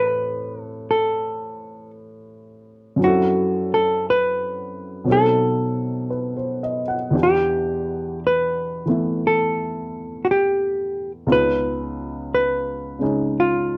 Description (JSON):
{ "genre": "jazz ballad", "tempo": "58 BPM", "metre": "4/4", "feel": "swing 67% on 8ths", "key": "unclear", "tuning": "A4 = 442 Hz", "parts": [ { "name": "hollow-body jazz guitar", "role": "melody", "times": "0.0-13.8 s", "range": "F4 to B4", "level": "-22 LUFS", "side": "equal", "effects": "none" }, { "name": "warm baby grand piano", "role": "accompaniment", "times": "0.0-13.8 s", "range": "Db2 to F#5", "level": "-26 LUFS", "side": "equal", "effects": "none" } ], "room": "moderate club reverb, RT60 0.7 s", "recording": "none", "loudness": "-21 LUFS", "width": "mono", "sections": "0.0-13.8 A section", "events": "none", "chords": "0.0 Am7; 3.0 F#m7b5; 5.1 B7b9; 7.1 Em7; 11.3 Db9" }